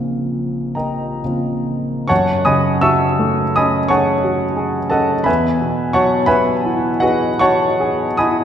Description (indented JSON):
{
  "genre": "classical, impressionist solo piano",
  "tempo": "39-60 BPM (dotted quarters)",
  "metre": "9/8",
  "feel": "rubato",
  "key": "F# dorian",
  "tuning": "A4 = 440 Hz",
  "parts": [
    { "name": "clear grand piano", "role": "solo", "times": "0.0-8.4 s", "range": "E2 to E6", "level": "-14 LUFS", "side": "equal", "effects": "none" }
  ],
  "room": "wet concert hall reverb, RT60 1.8 s",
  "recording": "heard from further back in the room",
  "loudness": "-14 LUFS",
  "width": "side -9 dB against mid",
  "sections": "0.0-2.1 A section; 2.1-8.4 B section",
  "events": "none",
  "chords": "0.0 Bbmadd9; 2.1 F#madd9; 5.3 Eadd9"
}